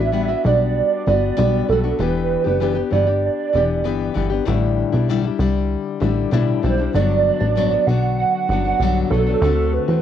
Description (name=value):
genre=indie pop, bedroom pop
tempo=97 BPM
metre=4/4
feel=straight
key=G major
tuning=A4 = 441 Hz
part: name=warbly nostalgic lead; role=melody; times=0.0-10.0 s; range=A4 to F#5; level=-20 LUFS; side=right 8 dB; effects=ensemble chorus, cassette tape
part: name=nylon-string guitar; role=accompaniment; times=0.0-10.0 s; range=G2 to G4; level=-21 LUFS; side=left 9 dB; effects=wide subtle chorus, warbly pitch drift
part: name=plucky analog bass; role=bass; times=0.0-10.0 s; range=E1 to E2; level=-20 LUFS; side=equal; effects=none
room=light reverb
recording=home recording on cassette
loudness=-16 LUFS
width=side -9 dB against mid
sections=0.0-10.0 A section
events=none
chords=0.0 Gmaj7; 2.0 Em7; 4.5 A7sus4; 6.9 Gmaj7; 9.4 D7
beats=0.14 0.76 1.38 | 2.00 2.61 3.23 3.85 | 4.47 5.09 5.71 6.33 | 6.94 7.56 8.18 8.80 | 9.42